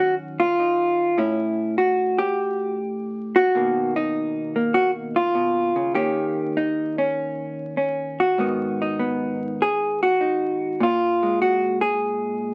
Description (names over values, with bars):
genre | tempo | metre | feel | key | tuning
solo jazz | 100 BPM | 4/4 | swing 68% on 8ths, rubato | Eb minor | A4 = 439 Hz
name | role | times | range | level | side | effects
hollow-body jazz guitar | solo | 0.0-12.5 s | Ab2 to Ab4 | -22 LUFS | equal | none
room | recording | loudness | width
moderate studio reverb, RT60 0.7 s | very old 78 rpm record, vinyl crackle | -22 LUFS | mono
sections
0.0-12.5 A section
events
none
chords
0.0 Ebm7; 1.2 A7; 3.5 Bmaj7#11; 5.9 Eb7; 8.4 Abm7; 10.8 Bb7(no3)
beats
0.58 | 1.18 1.78 2.37 2.96 | 3.55 4.14 4.74 5.34 | 5.94 6.55 7.16 7.77 | 8.38 8.99 9.60 10.20 | 10.80 11.40 11.99